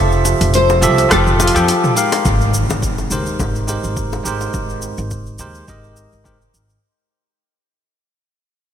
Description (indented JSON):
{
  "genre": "sunset chillout",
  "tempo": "105 BPM",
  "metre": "4/4",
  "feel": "swing 55% on 16ths",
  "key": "unclear",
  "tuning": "A4 = 440 Hz",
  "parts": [
    { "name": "barky tine electric piano", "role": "accompaniment", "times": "0.0-6.4 s", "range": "F3 to G5", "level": "-18 LUFS", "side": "moving between left 3 dB and right 6 dB", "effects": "auto-pan, low-pass filter, digital delay" },
    { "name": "upright bass", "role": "bass", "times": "0.0-6.8 s", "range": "F1 to F2", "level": "-19 LUFS", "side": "equal", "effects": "none" },
    { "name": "deep house drum kit", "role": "drums", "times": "0.1-6.8 s", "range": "hi-hat, rim click, shaker, toms", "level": "-22 LUFS", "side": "equal", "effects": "none" },
    { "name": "bongos", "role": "percussion", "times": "0.3-4.5 s", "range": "none", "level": "-27 LUFS", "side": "left 6 dB", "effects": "none" },
    { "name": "nylon-string guitar", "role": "melody", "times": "0.5-1.9 s", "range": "F4 to C5", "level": "-19 LUFS", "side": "left 1 dB", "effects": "lush chorus, digital delay" },
    { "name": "electronic kick drum", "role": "drums", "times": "1.1-6.4 s", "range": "none", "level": "-24 LUFS", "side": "equal", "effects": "none" },
    { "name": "impact", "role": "sound effects", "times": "2.3-4.5 s", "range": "none", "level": "-26 LUFS", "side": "equal", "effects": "none" }
  ],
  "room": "moderate lush hall reverb, RT60 2.6 s",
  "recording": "bright 1980s-style digital production",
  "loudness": "-13 LUFS",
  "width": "side -9 dB against mid",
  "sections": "0.0-2.3 A section; 2.3-6.8 B section",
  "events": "break 1.7-2.3; fade-out 2.3-6.8; impact 2.3-4.5; filter sweep on upright bass 2.3-6.8",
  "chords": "0.0 Fmaj9; 2.3 Abmaj9"
}